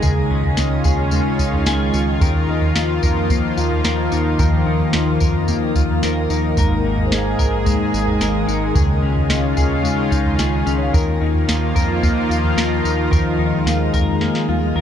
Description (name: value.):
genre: dream pop.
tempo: 110 BPM.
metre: 4/4.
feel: straight.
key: unclear.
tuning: A4 = 440 Hz.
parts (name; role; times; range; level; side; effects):
lush unison pad; sustained chords; 0.0-14.8 s; Eb3 to Ab4; -20 LUFS; equal; chorus.
clean electric guitar; arpeggios; 0.0-14.8 s; Ab2 to Bb4; -21 LUFS; left 3 dB; lush chorus, ping-pong delay.
round analog bass; bass; 0.0-14.8 s; Ab1 to F2; -23 LUFS; equal; none.
soft vintage rhythm box; drums; 0.0-14.8 s; kick drum, snare drum, tambourine, toms; -20 LUFS; right 1 dB; none.
celesta; texture; 7.1-14.8 s; C5 to Ab5; -36 LUFS; right 2 dB; none.
room: light reverb.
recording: dark, warm production.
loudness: -15 LUFS.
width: side -9 dB against mid.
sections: 0.0-14.8 A section.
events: drum fill 14.2-14.8.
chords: 0.0 Dbadd9; 2.2 Ebsus2; 6.6 Absus2; 8.8 Dbadd9; 10.9 Ebsus2.